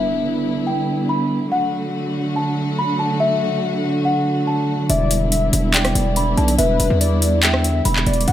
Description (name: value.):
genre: hip hop, trap.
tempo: 142 BPM.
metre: 4/4.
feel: half-time.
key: E minor.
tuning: A4 = 436 Hz.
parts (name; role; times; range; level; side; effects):
small celesta; melody; 0.0-8.3 s; E5 to B5; -23 LUFS; left 2 dB; none.
dark chamber string section; sustained chords; 0.0-8.3 s; D3 to A4; -21 LUFS; right 1 dB; none.
warm velvety synth lead; second line; 4.9-8.3 s; B4 to F#5; -24 LUFS; left 2 dB; chorus, tape echo.
distorted 808-style bass; bass; 4.9-8.3 s; E1 to E2; -18 LUFS; equal; distortion.
trap drum kit; drums; 4.9-8.3 s; handclaps, hi-hat, rim click; -20 LUFS; left 1 dB; overdrive.
room: light reverb.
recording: none.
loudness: -16 LUFS.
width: side -12 dB against mid.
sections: 0.0-8.3 A section.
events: none.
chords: 0.0 Em7; 1.5 D; 4.9 Em7.